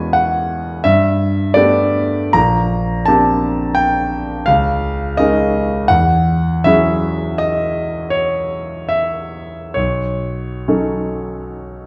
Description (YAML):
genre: classical, impressionist solo piano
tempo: 66-88 BPM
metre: 5/4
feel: rubato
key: unclear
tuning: A4 = 441 Hz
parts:
  - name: clear concert grand piano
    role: solo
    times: 0.0-11.9 s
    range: A#1 to B5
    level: -17 LUFS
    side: equal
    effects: none
room: wet recital hall reverb, RT60 1.5 s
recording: dark, warm production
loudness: -16 LUFS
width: mono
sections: 0.0-11.9 A section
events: none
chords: 0.0 E69; 0.9 G69; 2.4 A#69; 4.5 C#69; 5.9 E69; 9.8 B9